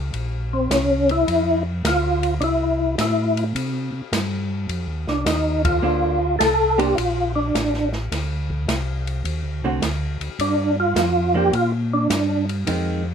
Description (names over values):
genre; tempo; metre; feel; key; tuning
soul jazz organ trio; 105 BPM; 4/4; swing 68% on 8ths; G minor; A4 = 440 Hz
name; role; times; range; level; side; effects
mellow tonewheel organ; bass; 0.0-13.1 s; A1 to C3; -24 LUFS; equal; chorus vibrato, slow rotary speaker
open jazz drum kit; drums; 0.1-12.8 s; hi-hat, kick drum, ride cymbal, snare drum; -27 LUFS; equal; none
percussive tonewheel organ; melody; 0.5-12.5 s; C4 to A4; -20 LUFS; equal; chorus vibrato, fast rotary speaker
vintage hollow-body jazz guitar; accompaniment; 5.8-13.0 s; D3 to C5; -24 LUFS; right 3 dB; none
room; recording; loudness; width
light reverb; minimal, uncompressed stereo recording; -19 LUFS; side -7 dB against mid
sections
0.0-13.1 A section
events
band accent 5.5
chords
0.0 Bbmadd9; 1.3 Fmaj7; 3.5 C5; 4.7 F5; 5.8 Bbmaj9; 8.1 D7(no3); 10.4 Gm7